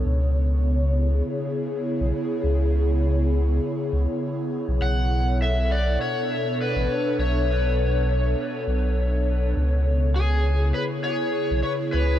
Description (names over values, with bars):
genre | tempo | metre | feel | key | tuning
ambient dub | 101 BPM | 4/4 | swing 55% on 16ths | unclear | A4 = 442 Hz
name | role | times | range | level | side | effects
airy breathy pad | sustained chords | 0.0-12.2 s | B2 to C#5 | -26 LUFS | right 1 dB | chorus
warm sub bass | bass | 0.0-12.2 s | A1 to C#2 | -21 LUFS | equal | none
overdriven slide guitar | melody | 4.8-12.2 s | G#4 to F#5 | -26 LUFS | left 2 dB | dub echo
room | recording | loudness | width
light reverb | none | -21 LUFS | side -11 dB against mid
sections
0.0-12.2 A section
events
none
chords
0.1 C#m7; 4.8 Bm9; 9.6 C#m7